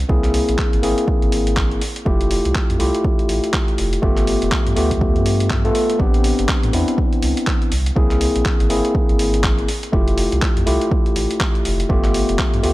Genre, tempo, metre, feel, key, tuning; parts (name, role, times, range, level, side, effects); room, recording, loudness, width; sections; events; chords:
deep house; 122 BPM; 4/4; swing 60% on 16ths; A4 = 440 Hz
warm sub bass; bass; 0.0-12.7 s; F1 to A2; -21 LUFS; equal; sidechain pumping
overdriven tine electric piano; stabs; 0.1-12.7 s; A3 to A4; -20 LUFS; left 1 dB; sidechain pumping, tape echo
electronic kick drum; drums; 0.1-12.5 s; -19 LUFS; equal
dusty soul sampler-style drum kit; drums; 0.2-12.7 s; handclaps, hi-hat; -25 LUFS; equal
little or no reverb; -15 LUFS; side -18 dB against mid
0.0-12.7 A section
0.0 Caug7; 1.8 Fmaj9; 4.0 G9; 6.0 Am11; 7.7 Caug7; 9.7 Fmaj9; 11.9 G9